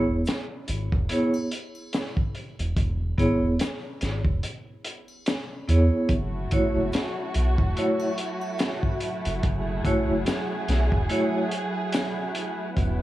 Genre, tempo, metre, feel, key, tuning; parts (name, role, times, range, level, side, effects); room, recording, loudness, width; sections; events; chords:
trip hop; 72 BPM; 4/4; swing 57% on 16ths; F# minor; A4 = 440 Hz
vibraphone with medium hard mallets; accompaniment; 0.0-11.4 s; A3 to C#5; -27 LUFS; right 1 dB; tremolo, tape echo
round analog bass; bass; 0.0-13.0 s; E1 to E2; -25 LUFS; equal
crunchy breakbeat drum kit; drums; 0.3-13.0 s; hi-hat, kick drum, snare drum; -28 LUFS; equal
tube shaker and triangle; percussion; 0.3-12.1 s; -49 LUFS; left 1 dB
warm studio violin section; sustained chords; 6.1-13.0 s; A3 to G#4; -31 LUFS; right 1 dB; vintage 12-bit sampler grit
wind-like tuned noise texture; texture; 7.0-13.0 s; F#3 to F#4; -35 LUFS; right 1 dB; built-in reverb
small room ambience; worn, warbling old tape, cassette tape, warbly pitch drift; -23 LUFS; side -15 dB against mid
0.0-13.0 A section
0.0 C#m7/E; 6.1 F#m7